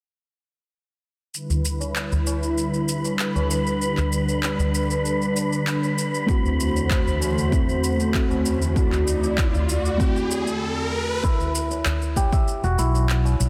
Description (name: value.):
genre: organic downtempo.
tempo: 97 BPM.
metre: 4/4.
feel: straight.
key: E minor.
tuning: A4 = 442 Hz.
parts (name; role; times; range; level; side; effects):
warm analog pad; sustained chords; 1.3-11.2 s; E2 to D5; -27 LUFS; equal; chorus, vintage 12-bit sampler grit, sidechain pumping.
electronic shaker and handclaps; drums; 1.3-13.5 s; none; -32 LUFS; equal; overdrive.
wind-like tuned noise texture; texture; 1.7-10.6 s; B5; -36 LUFS; equal; built-in reverb.
tabla; percussion; 1.5-13.5 s; none; -29 LUFS; equal; none.
deep mellow chord stab; accompaniment; 6.3-11.3 s; A3 to F#4; -29 LUFS; equal; chorus, sidechain pumping, digital delay.
electronic kick drum; drums; 6.3-12.4 s; none; -24 LUFS; equal; overdrive.
riser; sound effects; 8.4-11.2 s; none; -32 LUFS; equal; none.
kora; arpeggios; 11.2-13.5 s; E4 to E5; -29 LUFS; equal; low-pass filter, digital delay.
fretless electric bass; bass; 12.6-13.5 s; E1 to B1; -22 LUFS; equal; subtle chorus.
room: moderate lush hall reverb, RT60 2.9 s.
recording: dense, heavily limited modern master.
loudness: -22 LUFS.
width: mono.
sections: 1.3-11.2 A section; 11.2-13.5 B section.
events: riser 8.4-11.2; filter sweep on kora 11.2-13.5.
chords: 1.3 Em7; 6.3 D7/E; 11.2 Em.